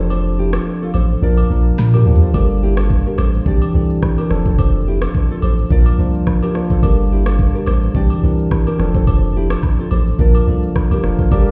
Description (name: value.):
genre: afrobeats.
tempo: 107 BPM.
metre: 4/4.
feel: swing 55% on 16ths.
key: unclear.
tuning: A4 = 442 Hz.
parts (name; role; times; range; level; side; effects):
bell-like tine electric piano; accompaniment; 0.0-11.5 s; E3 to C5; -22 LUFS; equal; none.
nylon-string guitar; riff; 0.0-11.4 s; E4 to D5; -28 LUFS; equal; tape echo.
punchy sub bass; bass; 0.0-11.5 s; F1 to Bb2; -18 LUFS; equal; none.
agogo bells and woodblock; percussion; 0.1-11.5 s; none; -35 LUFS; equal; none.
afro-pop drum kit; drums; 0.5-11.5 s; kick drum, rim click, shaker, snare drum, toms; -18 LUFS; equal; none.
hand-pumped harmonium; sustained chords; 11.3-11.5 s; G4 to A5; -25 LUFS; equal; none.
room: little or no reverb.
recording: heard muffled through a wall, stone room reverb, EQ.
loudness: -15 LUFS.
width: mono.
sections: 0.0-11.3 A section.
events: drum fill 1.8-2.3.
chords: 0.0 F6; 1.2 Bb; 2.3 Gmadd9; 3.5 Cadd9; 4.3 F6; 5.7 Bb; 6.8 Gmadd9; 8.0 Cadd9; 8.8 F6; 10.2 Bb.